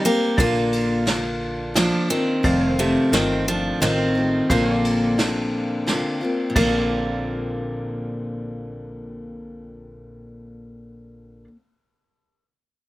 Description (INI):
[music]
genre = honky-tonk and classic country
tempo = 87 BPM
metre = 3/4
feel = straight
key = Bb major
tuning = A4 = 441 Hz
[part]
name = picked steel-string acoustic guitar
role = melody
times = 0.0-11.5 s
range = C3 to G4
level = -23 LUFS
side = equal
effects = slapback echo
[part]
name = picked steel-string acoustic guitar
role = accompaniment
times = 0.0-11.6 s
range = F2 to G4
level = -26 LUFS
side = left 1 dB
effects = none
[part]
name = pedal steel guitar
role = sustained chords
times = 0.0-11.4 s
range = C5 to G5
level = -31 LUFS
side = right 3 dB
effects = none
[part]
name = upright bass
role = bass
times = 0.4-11.5 s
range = F1 to Bb1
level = -30 LUFS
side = equal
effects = none
[part]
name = vintage brush drum kit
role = drums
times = 0.4-6.7 s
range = crash cymbal, kick drum, ride cymbal, snare drum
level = -26 LUFS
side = equal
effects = none
[sound]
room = little or no reverb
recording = none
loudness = -19 LUFS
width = side -17 dB against mid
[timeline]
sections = 0.0-6.6 A section; 6.6-10.7 B section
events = none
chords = 0.4 Bb; 2.4 F7; 4.5 Bbadd9